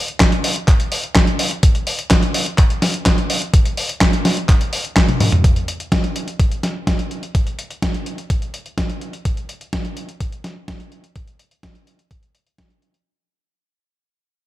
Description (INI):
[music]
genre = italo disco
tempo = 126 BPM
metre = 4/4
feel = straight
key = none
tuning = none
[part]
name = dusty soul sampler-style drum kit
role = drums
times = 0.1-13.0 s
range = handclaps, hi-hat, snare drum, toms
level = -19 LUFS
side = equal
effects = small room reverb, gated reverb
[part]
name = electronic kick drum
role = drums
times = 0.2-12.7 s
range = none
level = -16 LUFS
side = equal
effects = small room reverb
[sound]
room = digital ambience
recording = none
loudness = -16 LUFS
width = side -15 dB against mid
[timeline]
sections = 0.0-5.4 A section; 5.4-13.1 B section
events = drum fill 5.1-5.4; fade-out 5.4-13.1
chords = none